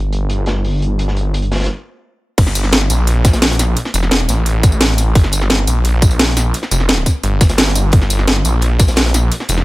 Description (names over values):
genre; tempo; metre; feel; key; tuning
dark technical drum and bass; 173 BPM; 4/4; straight; G minor; A4 = 440 Hz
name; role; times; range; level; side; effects
snarling distorted saw bass; bass; 0.0-9.6 s; F1 to Bb1; -15 LUFS; equal; distortion, tube saturation
crunchy breakbeat drum kit; drums; 0.1-9.6 s; hi-hat, snare drum; -26 LUFS; equal; high-pass filter on hats, low-pass filter on hats, studio ambience, high-pass filter on snare, low-pass filter on snare, high-pass filter on room, low-pass filter on room
drum and bass drum kit; drums; 2.4-9.6 s; crash cymbal, hi-hat, snare drum, tambourine; -16 LUFS; equal; overdrive, low-pass filter on hats, studio ambience, low-pass filter on cymbals, low-pass filter on snare, low-pass filter on perc
electronic kick drum; drums; 2.4-8.9 s; none; -10 LUFS; equal; overdrive, studio ambience
room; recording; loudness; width
studio reverb; none; -12 LUFS; side -19 dB against mid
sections
0.0-2.4 A section; 2.4-9.6 B section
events
stop 1.7-2.4; drop 2.4-9.6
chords
none